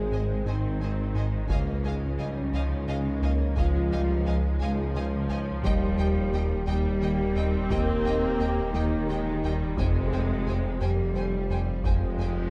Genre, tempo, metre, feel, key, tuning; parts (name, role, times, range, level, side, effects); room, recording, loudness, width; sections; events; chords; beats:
cinematic, hybrid orchestral and electronic film score; 58 BPM (dotted quarters); 6/8; straight; A4 = 440 Hz
rich symphonic viola section; accompaniment; 0.0-12.5 s; F3 to C4; -40 LUFS; equal
clear trombone section; sustained chords; 0.0-12.5 s; Eb3 to G4; -42 LUFS; equal
dark French horn section; sustained chords; 0.0-12.5 s; C4 to Bb4; -36 LUFS; equal
ethereal airy pad; sustained chords; 0.0-12.5 s; F3 to G5; -45 LUFS; equal
rich symphonic double bass section; bass; 0.0-12.5 s; Ab1 to F2; -35 LUFS; equal
warm sub bass; bass; 0.0-12.5 s; Eb1 to Db2; -36 LUFS; equal
warm symphonic cello section; bass; 0.0-12.5 s; C3 to Bb3; -36 LUFS; equal
warm tuba; bass; 0.0-12.5 s; F1 to Eb2; -38 LUFS; equal
rich symphonic violin section; melody; 0.1-12.3 s; G5 to Ab5; -48 LUFS; equal
rich studio violin section; second line; 0.1-12.3 s; C5 to G5; -43 LUFS; equal
rubbery square bass; riff; 0.1-12.4 s; Db2 to Ab3; -33 LUFS; equal
taiko ensemble; drums; 1.5-12.5 s; -34 LUFS; equal
reverse cymbal; sound effects; 12.2-12.5 s; -53 LUFS; equal
moderate concert hall reverb, RT60 2.2 s; dark, warm production; -27 LUFS; mono
0.0-12.5 A section
reverse cymbal 12.2-12.5
0.0 Ab; 1.5 Dbadd9; 5.6 Eb; 9.8 Fmadd9
0.47 | 1.50 2.54 | 3.57 4.60 | 5.64 6.67 | 7.71 8.74 | 9.78 10.81 | 11.85